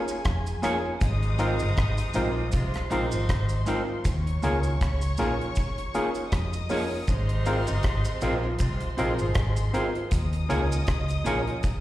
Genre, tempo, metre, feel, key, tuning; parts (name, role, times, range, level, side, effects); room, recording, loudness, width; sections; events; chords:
lovers rock reggae; 79 BPM; 4/4; swing 56% on 16ths; Ab major; A4 = 439 Hz
dark studio string section; second line; 0.0-11.8 s; Ab4 to Eb6; -36 LUFS; left 1 dB; slapback echo
barky tine electric piano; accompaniment; 0.0-11.4 s; C4 to Bb4; -31 LUFS; left 1 dB; overdrive, slapback echo
cabasa; percussion; 0.1-11.8 s; -45 LUFS; right 4 dB; dub echo
deep reggae drum kit; drums; 0.2-11.8 s; hi-hat, kick drum, rim click; -29 LUFS; equal
vintage muted fingered electric bass; bass; 0.3-11.4 s; G1 to F2; -26 LUFS; equal
mellow electric guitar; stabs; 0.6-11.4 s; Ab3 to Db5; -32 LUFS; right 2 dB; slapback echo
bright saxophone section; second line; 1.0-9.7 s; C3 to Ab4; -36 LUFS; equal; dub echo, slapback echo
light reverb, small room ambience; live gig heard through the venue's PA, recital hall reverb; -24 LUFS; side -15 dB against mid
0.0-11.8 A section
0.0 Eb7sus4 (rootless); 1.0 Ab6; 4.0 Eb7sus4; 7.1 Ab6; 10.1 Eb7sus4